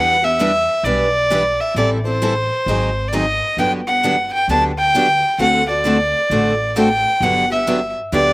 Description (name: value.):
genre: acoustic string swing (jazz manouche).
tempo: 132 BPM.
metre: 4/4.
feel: swing 63% on 8ths.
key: G major.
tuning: A4 = 440 Hz.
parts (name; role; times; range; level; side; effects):
warm violin; melody; 0.0-8.3 s; C5 to A5; -16 LUFS; equal; slapback echo.
picked steel-string acoustic guitar; accompaniment; 0.0-8.3 s; D3 to A4; -22 LUFS; left 2 dB; none.
picked steel-string acoustic guitar; accompaniment; 0.0-8.3 s; D3 to B4; -22 LUFS; right 2 dB; none.
upright bass; bass; 0.0-8.3 s; G1 to E2; -25 LUFS; equal; none.
room: little or no reverb.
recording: recorded outdoors, with no room sound.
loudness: -14 LUFS.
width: side -21 dB against mid.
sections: 0.0-8.3 A section.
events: none.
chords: 0.0 Em7; 1.8 Am7; 2.7 Ab7; 3.6 Gmaj7; 5.4 D7; 7.2 Gmaj7.